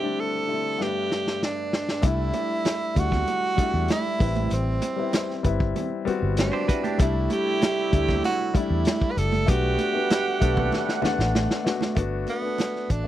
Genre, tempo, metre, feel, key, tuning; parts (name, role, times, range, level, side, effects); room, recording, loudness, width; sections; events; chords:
lush 1970s-style soul; 97 BPM; 4/4; straight; G major; A4 = 440 Hz
clear tenor saxophone; melody; 0.0-13.1 s; B3 to B4; -27 LUFS; right 3 dB
warm grand piano; accompaniment; 0.0-13.1 s; G2 to F#5; -28 LUFS; left 6 dB
vintage drum kit; drums; 0.8-13.0 s; hi-hat, kick drum, snare drum; -25 LUFS; equal
vintage muted fingered electric bass; bass; 2.0-13.1 s; F#1 to E2; -26 LUFS; equal
congas; percussion; 2.0-13.0 s; -33 LUFS; right 8 dB
semi-hollow electric guitar; riff; 6.5-7.1 s; D4 to C5; -30 LUFS; right 7 dB
mellow horn section; stabs; 7.0-11.6 s; C3 to F#5; -30 LUFS; right 9 dB
little or no reverb; dry, close 1970s-style studio recording; -22 LUFS; side -13 dB against mid
0.0-2.0 A section; 2.0-12.0 B section; 12.0-13.1 A section
break 0.0-2.0; drum fill 0.8-2.0, 10.7-12.0
0.0 D7sus4; 0.8 Gadd9; 2.0 C6; 4.2 Am7; 7.0 C6; 9.5 Gmaj7/B; 12.0 Gmaj7